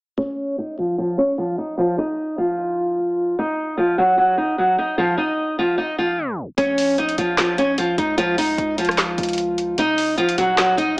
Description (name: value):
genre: hip hop, trap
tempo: 150 BPM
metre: 4/4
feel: half-time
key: Bb minor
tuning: A4 = 440 Hz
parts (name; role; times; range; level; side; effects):
- picked old ladder-braced acoustic guitar; melody; 0.2-11.0 s; F3 to Eb5; -18 LUFS; equal; low-pass filter
- hard-hitting 808-style bass; bass; 6.6-11.0 s; Eb1 to Db2; -33 LUFS; equal; none
- trap drum kit; drums; 6.6-10.9 s; handclaps, hi-hat, rim click, snare drum; -23 LUFS; equal; none
room: moderate digital room reverb, RT60 0.9 s, digital ambience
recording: tape stop, small speaker sound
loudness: -18 LUFS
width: side -28 dB against mid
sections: 0.2-6.6 A section; 6.6-11.0 B section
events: filter sweep on steel-string acoustic guitar 0.2-6.6; tape stop 6.2-6.6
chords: 0.2 Dbadd9; 1.8 Ebsus2/F; 3.4 Ebm; 5.0 F5; 6.6 Bbm; 8.2 Db; 9.8 Ebm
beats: | 0.18 0.58 0.98 1.38 | 1.78 2.18 2.58 2.98 | 3.38 3.78 4.18 4.58 | 4.98 5.38 5.78 6.18 | 6.58 6.98 7.38 7.78 | 8.18 8.58 8.98 9.38 | 9.78 10.18 10.58 10.98